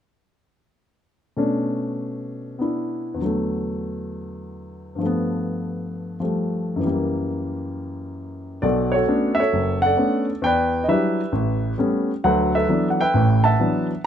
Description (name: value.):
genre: solo jazz.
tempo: 133 BPM.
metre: 4/4.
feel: swing 68% on 8ths.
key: B minor.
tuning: A4 = 440 Hz.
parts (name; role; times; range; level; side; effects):
warm grand piano; solo; 1.4-14.0 s; F#1 to A5; -20 LUFS; equal; none.
room: light reverb.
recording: close, detailed microphones.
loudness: -19 LUFS.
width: side -9 dB against mid.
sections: 1.4-8.6 A section; 8.6-14.1 B section.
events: none.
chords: 1.4 Bm9; 3.2 E9sus4; 5.0 G9; 6.8 F#7b9; 8.6 Bm9; 10.4 Em9; 11.3 A9; 12.2 D69.